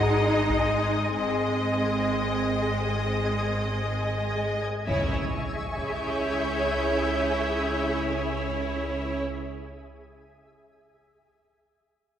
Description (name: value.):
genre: cinematic, suspense film score.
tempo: 66 BPM.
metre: 4/4.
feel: straight.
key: C# harmonic minor.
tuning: A4 = 440 Hz.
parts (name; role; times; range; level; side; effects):
rich symphonic violin section; melody; 0.0-9.2 s; D#5 to E5; -37 LUFS; left 3 dB; none.
bright symphonic violin section; second line; 0.0-9.2 s; C#5 to D#5; -32 LUFS; equal; none.
clear symphonic viola section; accompaniment; 0.0-9.2 s; G#3 to E4; -32 LUFS; left 1 dB; none.
twinkling granular texture; sustained chords; 0.0-9.2 s; G#4 to G#5; -32 LUFS; left 1 dB; built-in reverb.
dark symphonic cello section; bass; 0.0-9.2 s; B#3 to D#4; -31 LUFS; right 2 dB; none.
rich studio double bass section; bass; 0.0-9.2 s; G#1 to C#2; -31 LUFS; right 1 dB; none.
rich studio violin section; texture; 0.0-8.0 s; B#5 to G6; -36 LUFS; left 4 dB; none.
warm concert grand piano; texture; 0.0-4.9 s; F#4 to F#5; -41 LUFS; equal; none.
taiko ensemble; drums; 0.5-6.6 s; none; -38 LUFS; equal; none.
impact; sound effects; 4.9-9.8 s; none; -34 LUFS; equal; none.
room: wet scoring stage reverb, RT60 2.1 s.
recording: heard from further back in the room.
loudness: -24 LUFS.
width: side -9 dB against mid.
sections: 0.0-4.9 A section; 4.9-8.4 B section.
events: impact 4.9-8.4.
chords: 0.0 G#; 4.9 C#m.